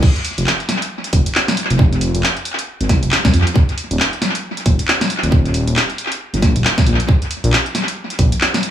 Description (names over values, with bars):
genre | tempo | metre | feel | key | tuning
UK garage, two-step garage | 136 BPM | 4/4 | swing 61% on 16ths | F minor | A4 = 440 Hz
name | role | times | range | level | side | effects
electronic kick drum | drums | 0.0-8.3 s | none | -14 LUFS | equal | none
garage drum kit | drums | 0.0-8.7 s | crash cymbal, handclaps, hi-hat, snare drum | -18 LUFS | equal | tape echo
dark detuned saw bass | bass | 0.4-8.3 s | Eb1 to F2 | -16 LUFS | equal | none
room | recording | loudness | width
light reverb | echo-heavy mix, studio ambience | -14 LUFS | side -10 dB against mid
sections
0.0-8.7 A section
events
none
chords
none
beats
| 0.03 0.47 0.91 1.35 | 1.79 2.23 2.67 3.12 | 3.56 4.00 4.44 4.88 | 5.32 5.76 6.20 6.64 | 7.09 7.53 7.97 8.41